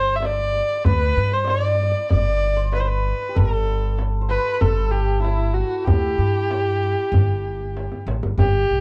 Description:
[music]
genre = Persian modal ensemble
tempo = 96 BPM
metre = 4/4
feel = straight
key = G dastgah mahur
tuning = A4 = 445 Hz
[part]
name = warm kamancheh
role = melody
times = 0.0-8.8 s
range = E4 to E5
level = -25 LUFS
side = equal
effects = plate reverb
[part]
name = santur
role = second line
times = 0.0-8.8 s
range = E4 to D5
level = -33 LUFS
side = equal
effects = none
[part]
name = upright bass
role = bass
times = 0.0-8.8 s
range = G1 to G2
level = -24 LUFS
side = equal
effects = none
[part]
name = tombak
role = percussion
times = 0.2-8.8 s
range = none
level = -24 LUFS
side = equal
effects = none
[sound]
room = light reverb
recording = dark, warm production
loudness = -21 LUFS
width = mono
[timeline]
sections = 0.0-8.4 A section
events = drum fill 7.7-8.4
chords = none

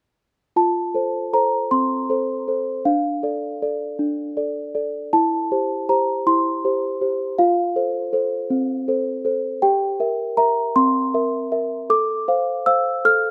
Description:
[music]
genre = classical, lullaby for celesta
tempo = 53 BPM (dotted quarters)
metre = 6/8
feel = rubato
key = F major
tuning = A4 = 440 Hz
[part]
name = small celesta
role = solo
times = 0.6-13.3 s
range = C4 to F6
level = -21 LUFS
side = equal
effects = none
[sound]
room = light reverb, small room ambience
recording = rough home demo mix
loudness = -21 LUFS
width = mono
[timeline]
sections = 0.6-13.3 A section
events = none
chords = 0.6 F; 2.9 Dm; 5.1 C/E; 7.4 F; 9.6 C7/G; 11.9 F/A

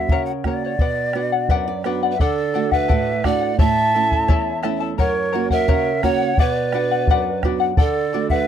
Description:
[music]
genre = andean folk, Andean ensemble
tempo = 86 BPM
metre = 2/4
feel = straight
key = B minor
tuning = A4 = 440 Hz
[part]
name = bright large quena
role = melody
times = 0.0-8.5 s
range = C#5 to A5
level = -23 LUFS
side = right 1 dB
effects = none
[part]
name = charango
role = accompaniment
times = 0.0-8.5 s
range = E4 to A5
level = -24 LUFS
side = left 13 dB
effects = none
[part]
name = nylon-string guitar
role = accompaniment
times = 0.0-8.5 s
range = E2 to E5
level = -24 LUFS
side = right 7 dB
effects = none
[part]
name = bombo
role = percussion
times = 0.1-8.5 s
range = none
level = -19 LUFS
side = equal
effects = none
[part]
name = breathy bright pan flute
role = second line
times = 2.1-8.5 s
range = A4 to E5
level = -24 LUFS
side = right 7 dB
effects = tape echo
[sound]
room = light reverb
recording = dry, close 1970s-style studio recording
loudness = -17 LUFS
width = side -9 dB against mid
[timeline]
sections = 0.0-2.2 A section; 2.2-8.5 A section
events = nylon-string guitar fill 1.1-2.2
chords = 0.0 F#; 0.8 Bm; 2.2 D; 3.6 A; 5.0 F#; 6.4 Bm; 7.8 D

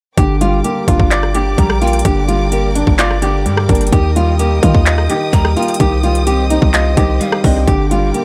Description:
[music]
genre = hip hop, trap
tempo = 128 BPM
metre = 4/4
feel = half-time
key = G minor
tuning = A4 = 440 Hz
[part]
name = nylon-string guitar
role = melody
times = 0.2-8.2 s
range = D4 to G4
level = -21 LUFS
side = equal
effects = dub echo
[part]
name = dark baby grand piano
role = accompaniment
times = 0.2-8.2 s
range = D3 to Eb5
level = -21 LUFS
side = equal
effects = dub echo
[part]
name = warm symphonic string section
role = sustained chords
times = 0.2-8.2 s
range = Bb4 to Eb6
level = -29 LUFS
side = equal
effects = none
[part]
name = warm 808-style bass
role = bass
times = 0.2-8.1 s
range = G1 to Eb3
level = -18 LUFS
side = equal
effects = none
[part]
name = trap drum kit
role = drums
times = 0.2-8.2 s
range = handclaps, hi-hat, kick drum, rim click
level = -18 LUFS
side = equal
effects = overdrive, dub echo
[part]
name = breathy mellow pan flute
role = second line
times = 1.6-2.0, 5.3-7.7 s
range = Eb5 to Bb5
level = -29 LUFS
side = equal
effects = dub echo
[sound]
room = little or no reverb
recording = echo-heavy mix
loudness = -13 LUFS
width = mono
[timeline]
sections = 0.2-8.2 A section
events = none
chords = 0.2 Gm; 3.9 Eb; 5.8 Cm; 7.7 Gm

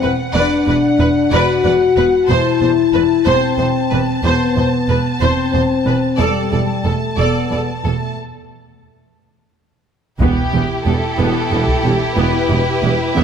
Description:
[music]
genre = cinematic, epic orchestral film score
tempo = 61 BPM (dotted quarters)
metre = 6/8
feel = straight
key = E minor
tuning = A4 = 440 Hz
[part]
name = warm symphonic violin section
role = melody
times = 0.0-13.2 s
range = G4 to A5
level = -25 LUFS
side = left 3 dB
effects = none
[part]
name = warm symphonic violin section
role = second line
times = 0.0-13.2 s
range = E4 to D5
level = -23 LUFS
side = left 1 dB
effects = none
[part]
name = warm studio viola section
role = accompaniment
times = 0.0-13.2 s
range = G3 to C5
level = -22 LUFS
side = right 1 dB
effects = none
[part]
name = mellow French horn section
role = sustained chords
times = 0.0-8.2, 11.2-13.2 s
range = G3 to G4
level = -17 LUFS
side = left 5 dB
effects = none
[part]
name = rich symphonic double bass section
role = bass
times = 0.0-13.2 s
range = E1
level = -21 LUFS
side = right 5 dB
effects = none
[part]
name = warm symphonic cello section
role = bass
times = 0.0-13.2 s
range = E2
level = -23 LUFS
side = right 3 dB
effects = none
[part]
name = mellow tuba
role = bass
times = 10.2-13.2 s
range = E1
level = -23 LUFS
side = right 4 dB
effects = none
[part]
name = taiko ensemble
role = drums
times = 10.2-12.0 s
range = none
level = -20 LUFS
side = equal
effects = none
[sound]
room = moderate scoring stage reverb, RT60 2.1 s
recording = none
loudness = -13 LUFS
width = side -7 dB against mid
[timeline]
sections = 0.0-10.2 A section; 10.2-13.2 A section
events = break 8.2-10.2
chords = 0.0 Bm/E; 2.3 Amadd9/E; 6.2 Dsus4/E (rootless); 10.2 Em

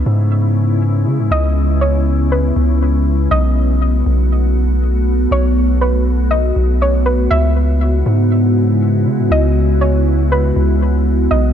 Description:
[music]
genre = hip hop, atmospheric cloud-rap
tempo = 120 BPM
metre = 4/4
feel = half-time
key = C# minor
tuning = A4 = 442 Hz
[part]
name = soft round pluck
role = melody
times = 0.0-11.5 s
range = B4 to E5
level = -21 LUFS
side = right 1 dB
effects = chorus, ping-pong delay
[part]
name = glassy FM pad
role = sustained chords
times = 0.0-11.5 s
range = C#3 to F#4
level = -18 LUFS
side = left 1 dB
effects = ensemble chorus, built-in reverb
[part]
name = long sustained 808-style bass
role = bass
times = 0.0-11.5 s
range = B1 to C#3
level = -14 LUFS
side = equal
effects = none
[sound]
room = little or no reverb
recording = none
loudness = -12 LUFS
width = side -9 dB against mid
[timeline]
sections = 0.0-11.5 A section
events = none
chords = 0.0 C#m7; 3.3 B7; 7.3 C#m7

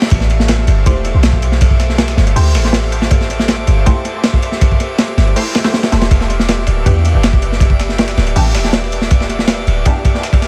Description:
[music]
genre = drum and bass, jungle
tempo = 160 BPM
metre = 4/4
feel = straight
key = A minor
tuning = A4 = 440 Hz
[part]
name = airy breathy pad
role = sustained chords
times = 0.0-10.5 s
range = G4 to E5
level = -26 LUFS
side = equal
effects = chorus
[part]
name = filtered dub chord stab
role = stabs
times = 0.0-10.5 s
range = E3 to C5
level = -26 LUFS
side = equal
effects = phaser, lush chorus, dub echo
[part]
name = crunchy breakbeat drum kit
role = drums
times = 0.0-10.5 s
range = hi-hat, kick drum, ride cymbal, snare drum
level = -16 LUFS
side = equal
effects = analog delay
[part]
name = warm 808-style bass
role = bass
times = 0.1-9.8 s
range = D1 to E2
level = -16 LUFS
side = equal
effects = tube saturation
[part]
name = dusty soul sampler-style drum kit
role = drums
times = 0.1-10.5 s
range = hi-hat, snare drum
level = -30 LUFS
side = equal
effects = high-pass filter on hats, high-pass filter on snare
[part]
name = drifting glass-harmonics texture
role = texture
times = 0.7-10.5 s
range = D6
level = -33 LUFS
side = equal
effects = chorus, built-in reverb
[sound]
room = light reverb, small room ambience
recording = echo-heavy mix, vinyl crackle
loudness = -13 LUFS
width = mono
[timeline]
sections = 0.0-10.5 A section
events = none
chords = 0.1 Am7; 6.1 Em7

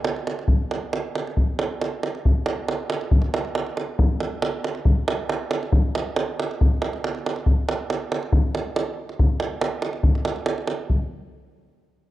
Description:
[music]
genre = balkan folk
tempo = 138 BPM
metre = 2/4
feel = straight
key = none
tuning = none
[part]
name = davul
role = percussion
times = 0.0-11.1 s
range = none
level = -21 LUFS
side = equal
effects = none
[sound]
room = small room ambience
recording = dry, close 1970s-style studio recording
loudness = -21 LUFS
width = side -15 dB against mid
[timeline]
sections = 0.0-4.0 A section; 4.0-10.9 A section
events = speeding up 0.0-11.7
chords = none

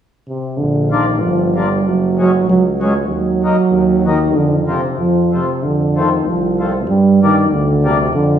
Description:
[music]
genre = alpine folk, alpine dance band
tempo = 96 BPM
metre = 2/4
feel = swing 54% on 8ths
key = Bb major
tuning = A4 = 439 Hz
[part]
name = mellow euphonium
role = melody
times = 0.3-8.4 s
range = C3 to Ab3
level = -14 LUFS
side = right 2 dB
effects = tape echo
[part]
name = clear tuba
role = bass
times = 0.6-8.4 s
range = Gb1 to G2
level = -19 LUFS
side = right 1 dB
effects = none
[part]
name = mellow accordion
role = accompaniment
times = 0.9-8.0 s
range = F3 to Eb4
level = -21 LUFS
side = left 3 dB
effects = none
[sound]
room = wet recital hall reverb, RT60 1.4 s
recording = studio reverb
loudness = -12 LUFS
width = side -9 dB against mid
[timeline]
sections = 0.6-8.4 A section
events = none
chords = 0.0 N.C.; 0.6 Bb; 1.8 Gbsus2; 3.1 Ebm; 4.3 Fsus4; 5.0 F; 6.9 Gm

